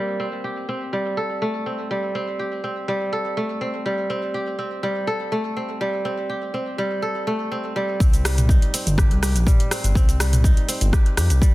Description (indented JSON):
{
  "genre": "afro house",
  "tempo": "123 BPM",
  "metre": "4/4",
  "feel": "straight",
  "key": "C dorian",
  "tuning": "A4 = 439 Hz",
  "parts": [
    { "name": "kora", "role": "arpeggios", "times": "0.0-11.5 s", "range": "G3 to Bb4", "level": "-24 LUFS", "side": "equal", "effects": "sidechain pumping, digital delay" },
    { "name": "smooth gliding synth bass", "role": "bass", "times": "8.0-11.4 s", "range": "G1 to F2", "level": "-19 LUFS", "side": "equal", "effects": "sidechain pumping" },
    { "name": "afro-pop drum kit", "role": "drums", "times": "8.0-11.5 s", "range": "cabasa, hi-hat, rim click, toms", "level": "-25 LUFS", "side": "equal", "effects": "studio reverb, soft clipping on snare" },
    { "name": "electronic kick drum", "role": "drums", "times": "8.0-11.5 s", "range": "none", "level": "-16 LUFS", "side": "equal", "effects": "overdrive, studio reverb" }
  ],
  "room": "light reverb, digital ambience",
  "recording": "dense, heavily limited modern master, low-pass filter",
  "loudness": "-20 LUFS",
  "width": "side -18 dB against mid",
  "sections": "0.0-8.0 A section; 8.0-11.5 B section",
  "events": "drop 8.0-11.5",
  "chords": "0.2 Gsus24; 8.0 Cm"
}